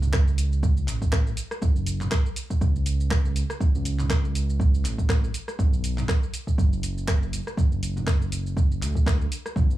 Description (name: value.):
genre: afro house.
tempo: 121 BPM.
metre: 4/4.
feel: swing 56% on 16ths.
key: B minor.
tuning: A4 = 440 Hz.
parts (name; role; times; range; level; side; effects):
smooth synth bass; bass; 0.0-9.8 s; F#1 to D2; -26 LUFS; right 1 dB; sidechain pumping.
deep house drum kit; drums; 0.0-9.8 s; handclaps, hi-hat, rim click, shaker, toms; -30 LUFS; right 1 dB; overdrive.
electronic kick drum; drums; 0.1-9.7 s; none; -22 LUFS; right 1 dB; overdrive.
room: little or no reverb.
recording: dry, gritty hardware recording, small room ambience.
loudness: -22 LUFS.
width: side -14 dB against mid.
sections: 0.0-9.8 A section.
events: none.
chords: none.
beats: 0.14 0.63 1.13 | 1.62 2.12 2.62 3.11 | 3.61 4.10 4.60 5.10 | 5.59 6.09 6.58 7.08 | 7.58 8.07 8.57 9.06 | 9.56.